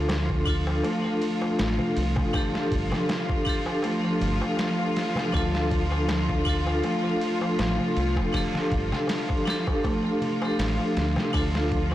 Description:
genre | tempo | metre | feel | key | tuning
trip hop | 80 BPM | 4/4 | swing 55% on 16ths | D minor | A4 = 442 Hz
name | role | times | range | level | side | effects
vibraphone with hard mallets | accompaniment | 0.0-11.9 s | D4 to A4 | -29 LUFS | equal | tremolo, tape echo
bright symphonic string section | sustained chords | 0.0-11.9 s | F3 to F4 | -29 LUFS | equal | none
Celtic harp | arpeggios | 0.0-11.9 s | D3 to D4 | -32 LUFS | equal | vintage 12-bit sampler grit, tape echo
deep dub fingered electric bass | bass | 0.0-11.9 s | G1 to D2 | -27 LUFS | equal | none
trip hop sampler-style drum kit | drums | 0.1-11.9 s | kick drum, ride cymbal, snare drum | -30 LUFS | equal | none
darbuka | percussion | 0.1-11.9 s | none | -37 LUFS | left 1 dB | none
room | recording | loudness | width
light reverb, studio ambience | blown-out, overdriven recording, vinyl crackle, overdrive | -23 LUFS | side -13 dB against mid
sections
0.0-11.9 A section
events
none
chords
0.0 Dm; 2.3 Gsus2; 5.3 Dm; 8.3 Gsus2; 11.3 Dm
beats
0.09 0.84 1.59 | 2.34 3.09 3.84 4.59 | 5.34 6.09 6.84 7.59 | 8.34 9.09 9.84 10.59 | 11.34

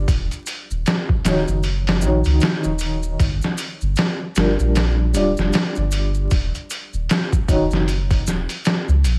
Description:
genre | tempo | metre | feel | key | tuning
trip hop | 77 BPM | 4/4 | swing 59% on 16ths | unclear | A4 = 440 Hz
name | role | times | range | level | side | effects
felt-muted upright piano | accompaniment | 0.0-7.8 s | Eb3 to D5 | -25 LUFS | equal | tremolo, tape echo
soft dub sub bass | bass | 0.0-9.2 s | D1 to Db2 | -22 LUFS | equal | none
trip hop sampler-style drum kit | drums | 0.1-9.2 s | hi-hat, kick drum, snare drum | -23 LUFS | equal | none
maracas | percussion | 0.1-9.2 s | none | -36 LUFS | equal | none
room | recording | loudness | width
little or no reverb | vinyl crackle | -20 LUFS | mono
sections
0.0-9.2 A section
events
none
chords
0.1 Ebm7; 3.2 Gm7; 6.3 Ebm7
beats
| 0.08 0.86 1.64 2.42 | 3.20 3.98 4.75 5.53 | 6.31 7.09 7.87 8.65

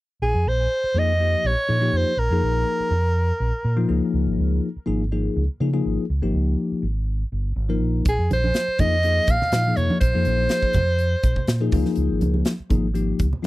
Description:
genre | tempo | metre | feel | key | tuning
electric jazz fusion | 122 BPM | 4/4 | straight | Bb dorian | A4 = 440 Hz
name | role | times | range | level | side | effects
clear soprano saxophone | melody | 0.2-3.9, 8.1-11.7 s | Ab4 to F5 | -23 LUFS | right 1 dB | none
fingered electric bass | bass | 0.2-13.3 s | G1 to Db3 | -22 LUFS | equal | none
bell-like tine electric piano | accompaniment | 1.0-13.5 s | F3 to Bb4 | -24 LUFS | left 4 dB | phaser
modern studio drum kit | drums | 8.1-13.5 s | hi-hat, kick drum, snare drum | -22 LUFS | equal | none
congas | percussion | 8.3-13.4 s | none | -29 LUFS | right 3 dB | none
room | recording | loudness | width
little or no reverb | dry, close 1970s-style studio recording | -19 LUFS | side -17 dB against mid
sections
0.2-13.5 A section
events
none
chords
0.2 Bb7sus2; 3.9 Dbadd9; 8.1 Bbsus2; 11.7 Dbadd9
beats
| 0.21 0.70 1.19 1.69 | 2.18 2.67 3.16 3.65 | 4.14 4.63 5.12 5.61 | 6.10 6.59 7.08 7.57 | 8.06 8.55 9.04 9.53 | 10.02 10.51 11.00 11.49 | 11.98 12.47 12.96 13.45

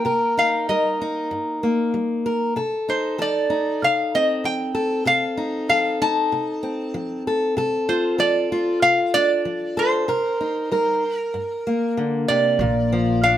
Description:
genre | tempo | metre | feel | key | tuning
acoustic folk duo or small band | 96 BPM | 4/4 | straight | C dorian | A4 = 439 Hz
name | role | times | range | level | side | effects
lap resonator guitar | melody | 0.0-13.4 s | C5 to A5 | -20 LUFS | right 1 dB | none
fingerpicked steel-string acoustic guitar | accompaniment | 0.0-13.4 s | G2 to Bb4 | -22 LUFS | left 1 dB | none
upright bass | bass | 12.6-13.4 s | Bb1 | -23 LUFS | right 2 dB | none
room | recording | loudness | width
moderate studio reverb, RT60 0.8 s | band playing live in one room | -19 LUFS | side -11 dB against mid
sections
0.0-12.6 A section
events
none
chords
0.0 Cm7; 2.6 F7/C; 7.6 Dm7/C; 10.1 Cm7; 12.6 Bb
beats
| 0.06 0.69 1.31 1.94 | 2.56 3.19 3.82 4.44 | 5.07 5.69 6.32 6.95 | 7.57 8.20 8.83 9.45 | 10.08 10.71 11.34 11.96 | 12.59 13.22

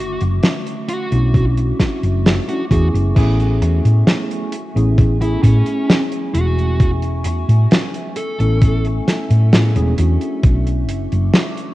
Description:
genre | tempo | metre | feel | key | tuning
vaporwave | 66 BPM | 4/4 | straight | A major | A4 = 438 Hz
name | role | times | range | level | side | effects
dark smooth lead guitar | melody | 0.0-8.8 s | C#4 to A4 | -26 LUFS | equal | overdrive, tape echo
mellow tine electric piano | accompaniment | 0.0-11.7 s | D3 to A4 | -23 LUFS | equal | lush chorus, analog delay
warbly tape-like pad | sustained chords | 0.0-11.7 s | A3 to D6 | -30 LUFS | right 3 dB | chorus, built-in reverb, phaser
hollow-body short-scale fingered electric bass | bass | 0.0-11.3 s | E1 to A2 | -15 LUFS | equal | none
damped 70s drum kit | drums | 0.2-11.7 s | crash cymbal, hi-hat, snare drum | -17 LUFS | equal | studio reverb
electronic kick drum | drums | 1.3-10.6 s | none | -14 LUFS | equal | overdrive, studio reverb
room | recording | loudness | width
light reverb, small room ambience | rough home demo mix, cassette tape | -14 LUFS | side -17 dB against mid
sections
0.0-3.2 A section; 3.2-11.7 B section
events
none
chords
0.0 Bm11; 3.2 Amaj7; 10.4 Bm11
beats
0.43 1.34 2.25 | 3.16 4.07 4.98 5.89 | 6.80 7.71 8.62 9.53 | 10.44 11.35

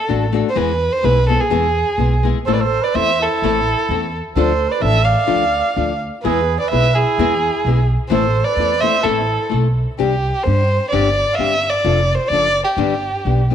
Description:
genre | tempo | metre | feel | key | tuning
mexican folk, mariachi | 128 BPM | 2/4 | rubato | A harmonic minor, C major from 10.0 s | A4 = 440 Hz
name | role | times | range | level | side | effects
dark violin | melody | 0.0-13.5 s | G4 to F5 | -18 LUFS | right 1 dB | none
nylon-string guitar | accompaniment | 0.1-13.5 s | G2 to A4 | -21 LUFS | left 11 dB | none
upright bass | bass | 0.1-13.5 s | F1 to G2 | -19 LUFS | right 1 dB | none
mellow trumpet | second line | 2.5-9.5 s | E4 to D5 | -22 LUFS | right 12 dB | none
room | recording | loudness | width
light reverb, small room ambience | 1960s-style stereo with parts hard left and right | -14 LUFS | side -9 dB against mid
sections
0.0-10.0 A section; 10.0-13.5 B section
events
none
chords
0.0 D; 0.6 E; 2.5 Am; 4.4 Dm; 6.2 E; 8.1 Am; 10.0 Csus2; 10.9 Gsus4; 11.9 Dm/F; 12.8 G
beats
0.10 | 0.57 1.04 | 1.51 1.99 | 2.47 2.95 | 3.42 3.89 | 4.36 4.82 | 5.29 5.76 | 6.24 6.71 | 7.18 7.64 | 8.10 8.56 | 9.03 9.51 | 9.99 10.46 | 10.94 11.40 | 11.86 12.32 | 12.79 13.26

